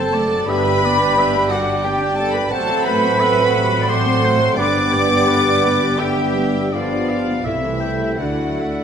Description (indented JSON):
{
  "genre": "classical, slow romantic movement for symphony orchestra",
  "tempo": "69-90 BPM",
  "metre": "3/4",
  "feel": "rubato",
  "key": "G major",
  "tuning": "A4 = 440 Hz",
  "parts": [
    { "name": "rich studio violin section", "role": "melody", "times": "0.0-8.8 s", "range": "D5 to D6", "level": "-28 LUFS", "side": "left 3 dB", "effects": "none" },
    { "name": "clear oboe", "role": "second line", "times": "0.0-8.8 s", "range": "B4 to G5", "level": "-28 LUFS", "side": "right 2 dB", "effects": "none" },
    { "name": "mellow clarinet", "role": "second line", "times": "0.0-8.8 s", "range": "D5 to A5", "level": "-29 LUFS", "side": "equal", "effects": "none" },
    { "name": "rich studio violin section", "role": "second line", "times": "0.0-8.8 s", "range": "D5 to D6", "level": "-26 LUFS", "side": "left 2 dB", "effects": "none" },
    { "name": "silver concert flute", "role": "second line", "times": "0.0-8.8 s", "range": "D5 to D6", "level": "-24 LUFS", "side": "left 1 dB", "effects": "none" },
    { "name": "mellow bassoon", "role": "accompaniment", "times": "0.0-8.8 s", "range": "A3 to D4", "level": "-25 LUFS", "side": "right 1 dB", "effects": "none" },
    { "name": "rich studio viola section", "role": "accompaniment", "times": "0.0-8.8 s", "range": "C3 to A4", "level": "-25 LUFS", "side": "left 1 dB", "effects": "none" },
    { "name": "dark studio double bass section", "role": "bass", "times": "0.0-8.8 s", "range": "F#1 to D2", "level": "-25 LUFS", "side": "right 4 dB", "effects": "none" },
    { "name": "warm studio cello section", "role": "bass", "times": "0.0-8.8 s", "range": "D4 to D5", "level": "-22 LUFS", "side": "right 4 dB", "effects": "none" },
    { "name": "mellow French horn section", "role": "sustained chords", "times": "0.5-8.8 s", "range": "C4 to A4", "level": "-24 LUFS", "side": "left 5 dB", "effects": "none" },
    { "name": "warm trombone section", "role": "sustained chords", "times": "0.5-8.8 s", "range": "D3 to B3", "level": "-25 LUFS", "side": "right 3 dB", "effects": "none" }
  ],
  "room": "wet recital hall reverb, RT60 1.4 s",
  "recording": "none",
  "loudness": "-15 LUFS",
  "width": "side -7 dB against mid",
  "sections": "0.0-8.8 A section",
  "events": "none",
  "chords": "0.5 G; 2.5 F#dim/A; 4.6 G; 6.7 G7; 7.5 C6; 8.2 D",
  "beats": "| 0.48 1.16 1.84 | 2.51 3.19 3.88 | 4.57 5.27 5.98 | 6.73 7.46 8.19"
}